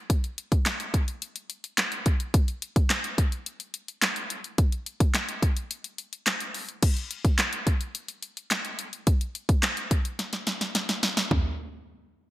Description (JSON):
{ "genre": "pop", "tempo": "107 BPM", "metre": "4/4", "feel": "straight", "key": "none", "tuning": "none", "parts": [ { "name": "house drum kit", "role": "drums", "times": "0.1-11.4 s", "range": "crash cymbal, handclaps, hi-hat, kick drum, snare drum, toms", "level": "-24 LUFS", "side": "equal", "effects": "gated reverb" } ], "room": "light reverb, digital ambience", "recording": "bright 1980s-style digital production", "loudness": "-24 LUFS", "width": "side -16 dB against mid", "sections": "0.0-6.8 A section; 6.8-11.3 B section", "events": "drop 0.0-6.8; break 5.7-6.8; drum fill 10.2-11.3", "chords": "none" }